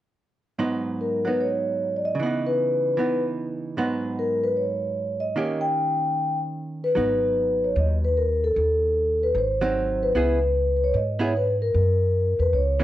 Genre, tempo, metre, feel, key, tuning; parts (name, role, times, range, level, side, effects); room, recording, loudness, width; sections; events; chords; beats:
jazz, small-group swing and bop; 151 BPM; 4/4; swing 65% on 8ths; G# minor; A4 = 441 Hz
archtop guitar, miked and amplified; accompaniment; 0.6-12.8 s; G#2 to G#4; -27 LUFS; right 2 dB
vibraphone with soft mallets; melody; 1.0-12.8 s; A4 to G5; -23 LUFS; left 1 dB
upright bass; bass; 7.0-12.8 s; G#1 to G#2; -24 LUFS; equal
light reverb; worn, warbling old tape, cassette tape, warbly pitch drift; -21 LUFS; side -13 dB against mid
0.6-7.0 A section; 7.0-12.8 B section
0.6 G#m7; 2.2 C#m9; 3.8 G#m7; 5.4 D#7; 7.0 G#m7; 8.6 B7/D# (rootless); 9.3 G#7; 10.1 C#m7; 11.7 F#
| 0.58 0.98 1.38 1.78 | 2.18 2.58 2.98 3.38 | 3.77 4.17 4.57 4.97 | 5.37 5.77 6.17 6.56 | 6.96 7.36 7.76 8.16 | 8.55 8.95 9.35 9.75 | 10.14 10.54 10.94 11.34 | 11.73 12.13 12.53